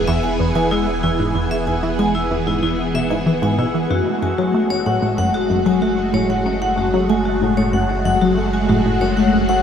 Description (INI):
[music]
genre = ambient, sequencer-driven space music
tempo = 94 BPM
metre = 4/4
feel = straight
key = F# minor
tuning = A4 = 440 Hz
[part]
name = phased string machine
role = sustained chords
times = 0.0-9.6 s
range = E3 to G#4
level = -20 LUFS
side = equal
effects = ensemble chorus, phaser
[part]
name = tight sequenced synth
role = riff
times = 0.0-9.6 s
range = E2 to A3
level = -20 LUFS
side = left 1 dB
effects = chorus, phaser, tape echo
[part]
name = round analog bass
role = bass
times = 0.0-9.6 s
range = E1 to F#1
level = -27 LUFS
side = equal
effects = none
[part]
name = bubbling stepped-filter texture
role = texture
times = 0.0-9.6 s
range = F#5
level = -33 LUFS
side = left 1 dB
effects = chorus, built-in reverb
[part]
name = vibraphone with hard mallets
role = arpeggios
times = 0.1-9.6 s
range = E4 to G#5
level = -22 LUFS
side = moving between left 5 dB and right 1 dB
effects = auto-pan, tape echo
[sound]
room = wet huge ambient reverb, RT60 8.0 s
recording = none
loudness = -16 LUFS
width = side -8 dB against mid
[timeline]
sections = 0.0-9.6 A section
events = none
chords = 0.0 E; 3.9 F#madd9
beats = 0.08 0.71 | 1.35 1.99 2.63 3.27 | 3.91 4.54 5.18 5.82 | 6.46 7.10 7.74 8.37 | 9.01